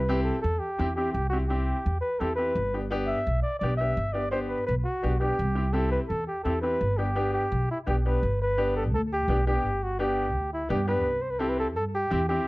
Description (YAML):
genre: latin, cumbia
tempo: 170 BPM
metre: 4/4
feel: straight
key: G major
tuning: A4 = 440 Hz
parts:
  - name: mellow flugelhorn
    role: melody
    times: 0.0-12.5 s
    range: E4 to E5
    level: -28 LUFS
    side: equal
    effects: slapback echo
  - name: upright bass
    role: bass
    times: 0.0-12.5 s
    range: G1 to G2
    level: -28 LUFS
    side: equal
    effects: none
  - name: clear upright piano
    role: accompaniment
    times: 0.1-12.5 s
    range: B3 to G4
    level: -31 LUFS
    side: left 1 dB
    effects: none
room: light reverb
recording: dry, close 1970s-style studio recording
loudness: -24 LUFS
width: side -21 dB against mid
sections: 0.0-8.2 A section; 8.2-12.5 B section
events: none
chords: 0.0 C; 2.6 G; 5.4 C; 6.8 G; 11.1 C